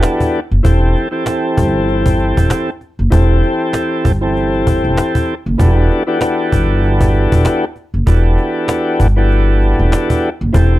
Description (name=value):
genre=hip hop, boom-bap hip-hop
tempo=97 BPM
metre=4/4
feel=swing 56% on 16ths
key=E minor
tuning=A4 = 440 Hz
part: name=tonewheel organ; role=accompaniment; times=0.0-10.8 s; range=E3 to A4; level=-15 LUFS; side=left 1 dB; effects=slow rotary speaker, high-pass filter, low-pass filter
part: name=cajon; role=drums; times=0.0-10.7 s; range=none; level=-16 LUFS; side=equal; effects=none
part: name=upright bass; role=bass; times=0.5-10.8 s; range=E1 to G1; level=-13 LUFS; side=equal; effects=none
room=light reverb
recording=dark, warm production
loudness=-12 LUFS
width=side -16 dB against mid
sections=0.0-5.6 A section; 5.6-10.8 A section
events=none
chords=0.0 Em11; 0.6 Am7/E; 5.6 Em11